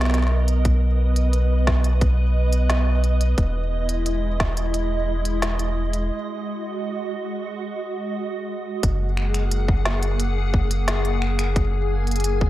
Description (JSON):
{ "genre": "IDM", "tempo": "88 BPM", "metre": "4/4", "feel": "straight", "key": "F# mixolydian", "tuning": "A4 = 440 Hz", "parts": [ { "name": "glassy FM pad", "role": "sustained chords", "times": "0.0-12.5 s", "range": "G#3 to G#5", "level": "-27 LUFS", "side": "right 1 dB", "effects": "ensemble chorus, built-in reverb, sidechain pumping" }, { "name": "warm sub bass", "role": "bass", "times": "0.0-12.5 s", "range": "E1 to B1", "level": "-21 LUFS", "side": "equal", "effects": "none" }, { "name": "organic electronic drum kit", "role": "drums", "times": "0.0-12.4 s", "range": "finger snaps, hi-hat, snare drum", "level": "-28 LUFS", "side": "equal", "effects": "overdrive" }, { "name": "electronic kick drum", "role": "drums", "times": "0.7-4.5, 8.8-12.5 s", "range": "none", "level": "-22 LUFS", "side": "equal", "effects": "overdrive" } ], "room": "little or no reverb", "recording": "dry, gritty hardware recording", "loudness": "-20 LUFS", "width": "side -15 dB against mid", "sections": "0.0-8.8 A section; 8.8-12.5 B section", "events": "break 6.1-8.8", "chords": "0.0 Bmaj7; 3.4 Emaj7; 8.8 F#add9", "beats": "| 0.65 1.33 2.02 2.70 | 3.38 4.06 4.74 5.42 | 6.11 6.79 7.47 8.15 | 8.83 9.52 10.20 10.88 | 11.56 12.24" }